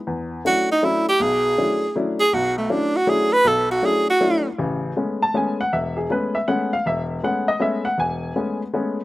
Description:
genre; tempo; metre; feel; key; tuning
jazz; 159 BPM; 3/4; swing 66% on 8ths; A major from 4.6 s; A4 = 440 Hz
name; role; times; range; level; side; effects
warm baby grand piano; accompaniment; 0.1-9.0 s; E1 to A5; -22 LUFS; left 2 dB; none
warm tenor saxophone; melody; 0.5-4.5 s; A3 to B4; -18 LUFS; right 1 dB; none
room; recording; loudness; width
little or no reverb; recorded outdoors, with no room sound; -18 LUFS; side -17 dB against mid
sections
0.0-4.6 A section; 4.6-9.0 A section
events
tenor saxophone solo 0.0-4.6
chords
0.1 E13sus4; 4.6 Amaj9

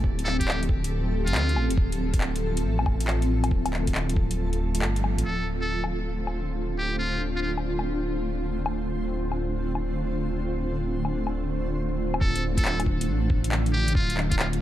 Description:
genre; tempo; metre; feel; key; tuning
future garage; 138 BPM; 4/4; swing 67% on 16ths; D minor; A4 = 441 Hz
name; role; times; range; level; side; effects
granular cloud pad; sustained chords; 0.0-14.6 s; D3 to A4; -30 LUFS; equal; built-in reverb, sidechain pumping
dark detuned saw bass; bass; 0.0-14.6 s; D1 to D2; -28 LUFS; equal; sidechain pumping
electronic kick drum; drums; 0.0-4.3, 12.2-14.4 s; none; -25 LUFS; equal; overdrive, small room ambience
backwards swelling texture; texture; 0.0-14.6 s; F3 to F5; -37 LUFS; right 1 dB; built-in reverb
trumpet with metal mute; melody; 0.2-1.7, 5.2-7.5, 12.2-14.5 s; F4 to A4; -33 LUFS; equal; vintage 12-bit sampler grit, tape echo
garage drum kit; drums; 0.2-14.6 s; handclaps, hi-hat, woodblock; -32 LUFS; left 2 dB; small room ambience
room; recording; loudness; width
light reverb, digital ambience; none; -24 LUFS; side -13 dB against mid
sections
0.0-5.3 A section; 5.3-12.2 B section; 12.2-14.6 C section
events
band accent 4.8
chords
0.0 Fadd9/D; 5.3 Dm7; 12.2 Dm

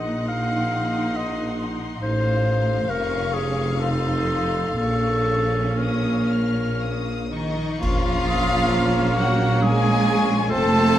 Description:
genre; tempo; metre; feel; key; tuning
classical, slow romantic movement for symphony orchestra; 57-72 BPM; 3/4; rubato; Bb minor; A4 = 443 Hz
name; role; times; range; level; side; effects
warm studio violin section; melody; 0.0-11.0 s; Eb5 to F6; -30 LUFS; left 2 dB; none
dark studio violin section; second line; 0.0-11.0 s; Eb4 to Gb5; -31 LUFS; left 4 dB; none
warm clarinet; second line; 0.0-11.0 s; Eb4 to F5; -26 LUFS; left 1 dB; none
warm studio viola section; accompaniment; 0.0-11.0 s; Bb3 to F4; -31 LUFS; equal; none
mellow tuba; bass; 0.0-11.0 s; F1 to Bb1; -30 LUFS; right 2 dB; none
warm studio cello section; bass; 0.0-11.0 s; F2 to A3; -26 LUFS; right 1 dB; none
warm symphonic double bass section; bass; 0.0-11.0 s; F1 to Bb1; -27 LUFS; right 1 dB; none
cymbal swell, clash cymbals and concert bass drum; percussion; 4.8-9.6 s; none; -30 LUFS; equal; none
silver concert flute; second line; 7.8-11.0 s; C6 to F6; -30 LUFS; left 4 dB; none
warm oboe; second line; 7.8-11.0 s; C5 to Db5; -33 LUFS; right 2 dB; none
mellow bassoon; accompaniment; 7.8-11.0 s; Bb3 to C4; -28 LUFS; right 3 dB; none
dark French horn section; sustained chords; 7.8-11.0 s; F3 to Db4; -30 LUFS; equal; none
room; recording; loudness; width
light reverb; vinyl crackle; -19 LUFS; side -12 dB against mid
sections
0.0-7.8 A section; 7.8-11.0 B section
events
band accent 7.8-8.7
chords
0.0 Cm7b5/Bb; 2.0 F7/A; 2.9 Bbm/F; 3.8 F7; 4.8 Bbm

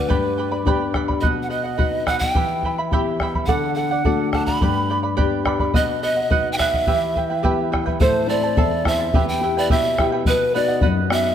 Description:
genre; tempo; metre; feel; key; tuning
andean folk, Andean ensemble; 106 BPM; 2/4; straight; E minor; A4 = 440 Hz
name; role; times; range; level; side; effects
breathy polished pan flute; melody; 0.0-11.3 s; B4 to B5; -22 LUFS; right 1 dB; none
charango; accompaniment; 0.0-11.3 s; E4 to B5; -24 LUFS; right 5 dB; none
nylon-string guitar; accompaniment; 0.0-11.3 s; E2 to A4; -24 LUFS; left 5 dB; none
bombo; percussion; 0.1-11.2 s; none; -22 LUFS; left 1 dB; none
room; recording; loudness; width
moderate concert hall reverb, RT60 1.7 s; none; -17 LUFS; side -9 dB against mid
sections
0.0-8.0 A section; 8.0-11.3 B section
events
none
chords
0.1 G; 1.2 B; 2.4 Em; 3.5 D; 4.6 G; 5.7 B; 6.9 Em; 8.0 Am; 9.1 Em; 10.3 B

